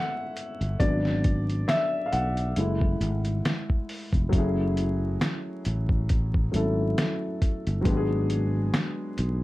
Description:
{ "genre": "lo-fi hip hop", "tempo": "68 BPM", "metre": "4/4", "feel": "swing 56% on 16ths", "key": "F# minor", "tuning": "A4 = 440 Hz", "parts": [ { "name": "dark upright piano", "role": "accompaniment", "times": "0.0-9.4 s", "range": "F#3 to F#5", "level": "-28 LUFS", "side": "left 1 dB", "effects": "low-pass filter" }, { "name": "lo-fi sampler-style drum kit", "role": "drums", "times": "0.4-9.4 s", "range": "hi-hat, kick drum, snare drum", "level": "-26 LUFS", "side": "equal", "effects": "overdrive" }, { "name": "sustaining fretless electric bass", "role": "bass", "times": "0.6-9.4 s", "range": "E#1 to B1", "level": "-26 LUFS", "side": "equal", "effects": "none" } ], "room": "moderate small room reverb, RT60 0.5 s", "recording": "dark, warm production, vinyl crackle, lossy compression artefacts", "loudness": "-24 LUFS", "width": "side -18 dB against mid", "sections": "0.0-4.3 A section; 4.3-9.4 B section", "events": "upright piano solo 0.0-4.3", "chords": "0.0 F#m9; 0.8 G#m7b5; 2.6 F#m7; 4.3 F#m9; 7.9 G#m7b5", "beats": "| 0.80 1.68 2.56 3.44 | 4.33 5.21 6.09 6.97 | 7.86 8.74" }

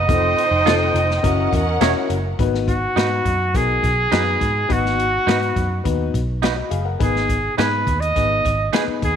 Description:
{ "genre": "uptempo 1960s-style soul", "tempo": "104 BPM", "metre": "4/4", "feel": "straight", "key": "unclear", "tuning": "A4 = 439 Hz", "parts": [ { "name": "warm trumpet", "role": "melody", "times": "0.0-9.2 s", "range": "F#4 to D#5", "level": "-20 LUFS", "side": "right 2 dB", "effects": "none" }, { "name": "warm studio string section", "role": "second line", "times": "0.0-2.4 s", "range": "C#4 to G5", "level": "-25 LUFS", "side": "equal", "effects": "none" }, { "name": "vintage muted picked electric bass", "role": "bass", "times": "0.0-9.2 s", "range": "E1 to G#2", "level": "-23 LUFS", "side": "right 1 dB", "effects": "none" }, { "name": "warm upright piano", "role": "accompaniment", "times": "0.1-9.1 s", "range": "B3 to F#5", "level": "-25 LUFS", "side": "left 10 dB", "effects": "none" }, { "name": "swinging big-band drum kit", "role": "drums", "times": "0.1-9.2 s", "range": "hi-hat, kick drum, snare drum", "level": "-24 LUFS", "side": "left 2 dB", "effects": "none" }, { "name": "electric guitar through a small old amp", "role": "stabs", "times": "0.7-8.8 s", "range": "D#4 to Eb5", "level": "-25 LUFS", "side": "right 13 dB", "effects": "spring reverb" } ], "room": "light reverb", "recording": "1960s-style stereo with parts hard left and right", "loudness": "-16 LUFS", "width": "side -8 dB against mid", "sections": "0.0-2.4 A section; 2.4-9.2 B section", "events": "none", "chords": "0.1 F7; 1.2 F#7; 2.4 B/G#; 7.0 G#m", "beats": "| 0.09 0.66 1.24 1.82 | 2.39 2.97 3.55 4.12 | 4.70 5.28 5.86 6.43 | 7.01 7.59 8.16 8.74" }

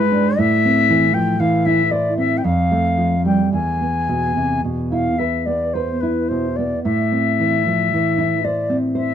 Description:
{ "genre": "romantic duo for flute and classical guitar", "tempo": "54-60 BPM", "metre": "3/4", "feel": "rubato", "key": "A minor", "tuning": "A4 = 440 Hz", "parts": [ { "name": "mellow concert flute", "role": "melody", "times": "0.0-9.1 s", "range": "B4 to G#5", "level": "-20 LUFS", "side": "left 4 dB", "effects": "none" }, { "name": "nylon-string guitar", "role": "accompaniment", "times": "0.0-9.1 s", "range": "E2 to C5", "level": "-18 LUFS", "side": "right 1 dB", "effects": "none" } ], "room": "light reverb", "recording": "dry, close 1970s-style studio recording", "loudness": "-16 LUFS", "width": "side -9 dB against mid", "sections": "0.0-9.1 A section", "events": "none", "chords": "0.4 Am; 2.4 Fadd9; 3.5 E; 6.8 Am", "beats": "| 0.38 1.40 2.44 | 3.52 4.63 5.73 | 6.84 7.92 8.94" }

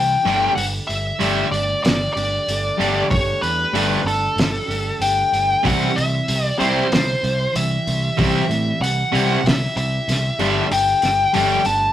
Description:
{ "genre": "classic rock", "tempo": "95 BPM", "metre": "4/4", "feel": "straight", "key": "unclear", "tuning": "A4 = 440 Hz", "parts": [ { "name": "nasal lead guitar with a parked wah", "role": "melody", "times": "0.0-11.9 s", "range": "A4 to A5", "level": "-20 LUFS", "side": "left 2 dB", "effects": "overdrive" }, { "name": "picked steel-string acoustic guitar", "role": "accompaniment", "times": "0.0-11.9 s", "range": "C3 to G4", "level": "-30 LUFS", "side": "right 3 dB", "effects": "none" }, { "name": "growling fingered electric bass", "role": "bass", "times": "0.0-11.9 s", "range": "G1 to A2", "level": "-24 LUFS", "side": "equal", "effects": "overdrive" }, { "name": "cranked stack guitar", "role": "riff", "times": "0.3-11.6 s", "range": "G2 to C4", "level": "-23 LUFS", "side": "right 6 dB", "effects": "overdrive" }, { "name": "distorted electric guitar", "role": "riff", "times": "0.3-11.6 s", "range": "C3 to G4", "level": "-22 LUFS", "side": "left 5 dB", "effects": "distortion" }, { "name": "cloth-damped thuddy drum kit", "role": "drums", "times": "0.3-11.8 s", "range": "hi-hat, kick drum, snare drum", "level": "-24 LUFS", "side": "equal", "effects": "none" } ], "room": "moderate studio reverb, RT60 0.5 s", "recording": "rough rehearsal-room recording", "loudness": "-16 LUFS", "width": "side -11 dB against mid", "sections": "0.0-11.9 A section", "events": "half time 0.0-11.9", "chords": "0.3 Gsus2; 5.6 C; 10.4 Gsus2", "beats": "| 0.57 1.21 1.84 2.48 | 3.11 3.74 4.38 5.01 | 5.64 6.28 6.91 7.55 | 8.18 8.81 9.45 10.08 | 10.71 11.35" }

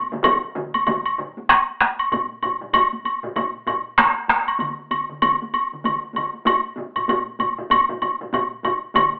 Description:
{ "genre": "japanese traditional, taiko drum ensemble", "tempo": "97 BPM", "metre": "4/4", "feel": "swing 60% on 16ths", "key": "none", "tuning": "none", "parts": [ { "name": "taiko ensemble", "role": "percussion", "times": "0.1-9.2 s", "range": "none", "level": "-31 LUFS", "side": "equal", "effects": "none" }, { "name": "taiko ensemble", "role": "percussion", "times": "0.1-9.1 s", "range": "none", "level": "-23 LUFS", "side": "equal", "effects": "none" }, { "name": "taiko ensemble", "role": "percussion", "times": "0.1-9.1 s", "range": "none", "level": "-21 LUFS", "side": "equal", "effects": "none" }, { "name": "woodblock", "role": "percussion", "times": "0.2-9.1 s", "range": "none", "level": "-19 LUFS", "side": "equal", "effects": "none" } ], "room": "wet studio reverb, RT60 0.5 s", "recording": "band playing live in one room, telephone sound", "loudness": "-18 LUFS", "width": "side -40 dB against mid", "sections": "0.0-1.5 A section; 1.5-9.2 B section", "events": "none", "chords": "none", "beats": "0.25 0.87 | 1.49 2.12 2.74 3.36 | 3.98 4.60 5.22 5.85 | 6.47 7.09 7.71 8.33 | 8.95" }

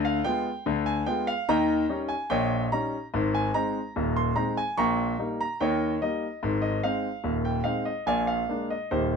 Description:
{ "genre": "ragtime piano", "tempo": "73 BPM", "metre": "2/4", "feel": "straight", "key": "Ab major", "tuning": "A4 = 440 Hz", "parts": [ { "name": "clear concert grand piano", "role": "solo", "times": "0.0-9.2 s", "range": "Eb1 to Db6", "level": "-24 LUFS", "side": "equal", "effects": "none" } ], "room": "moderate studio reverb, RT60 0.5 s", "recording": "none", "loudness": "-25 LUFS", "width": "side -6 dB against mid", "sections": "0.0-9.2 A section", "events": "none", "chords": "0.0 Ddim7; 1.5 Eb7; 3.1 Ab; 4.8 Eb7/Bb; 6.4 Ab; 8.1 Bb7", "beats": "0.67 | 1.49 2.31 | 3.13 3.95 | 4.78 5.60 | 6.42 7.25 | 8.07 8.89" }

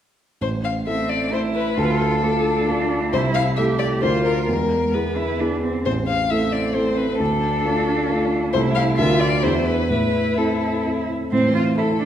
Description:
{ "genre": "quick classical-period movement for piano trio", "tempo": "132 BPM", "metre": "3/4", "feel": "rubato", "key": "A minor", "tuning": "A4 = 440 Hz", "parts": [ { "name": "rich violin", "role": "melody", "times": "0.4-12.1 s", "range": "A4 to F5", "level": "-23 LUFS", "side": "left 5 dB", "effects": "none" }, { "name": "warm baby grand piano", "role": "accompaniment", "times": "0.4-12.1 s", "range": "A1 to Bb4", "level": "-21 LUFS", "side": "right 1 dB", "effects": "none" }, { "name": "rich cello", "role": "second line", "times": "0.9-12.1 s", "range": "G#3 to G4", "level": "-25 LUFS", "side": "right 3 dB", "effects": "none" } ], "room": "wet recital hall reverb, RT60 1.4 s", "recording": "heard from further back in the room", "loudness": "-18 LUFS", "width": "side -10 dB against mid", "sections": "0.4-11.3 A section", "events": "none", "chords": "0.4 Am; 1.8 Dm; 3.1 Am/C; 4.0 Bb/D; 4.5 E; 5.9 Am; 7.2 Dm; 8.5 Am/C; 9.0 Bb/D; 9.4 E7; 9.9 Am", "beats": "| 0.41 0.87 1.32 | 1.78 2.23 2.68 | 3.13 3.57 4.02 | 4.47 4.94 5.40 | 5.86 6.31 6.75 | 7.20 7.65 8.09 | 8.54 8.98 9.44 | 9.91 10.38 10.85 | 11.32 11.78" }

